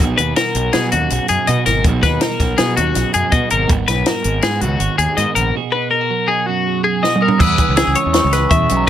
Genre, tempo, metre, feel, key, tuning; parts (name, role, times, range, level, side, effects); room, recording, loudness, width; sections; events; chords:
math rock and midwest emo; 162 BPM; 5/4; straight; B major; A4 = 437 Hz
twelve-string electric guitar; accompaniment; 0.0-8.9 s; F#2 to C#5; -22 LUFS; right 10 dB
fuzz fingered electric bass; bass; 0.0-8.8 s; G#1 to B2; -19 LUFS; equal; overdrive
compact cocktail drum kit; drums; 0.0-8.8 s; crash cymbal, hi-hat, kick drum, snare drum, toms; -18 LUFS; equal
twelve-string electric guitar; arpeggios; 0.2-8.9 s; F#4 to E5; -18 LUFS; left 5 dB
glockenspiel with rubber mallets; melody; 7.0-8.9 s; A#5 to E6; -18 LUFS; right 2 dB
light reverb; -13 LUFS; side -10 dB against mid
0.0-7.4 A section; 7.4-8.9 B section
drum fill 7.0-7.4
0.0 B6; 3.7 G#m9; 5.5 B6; 7.4 E6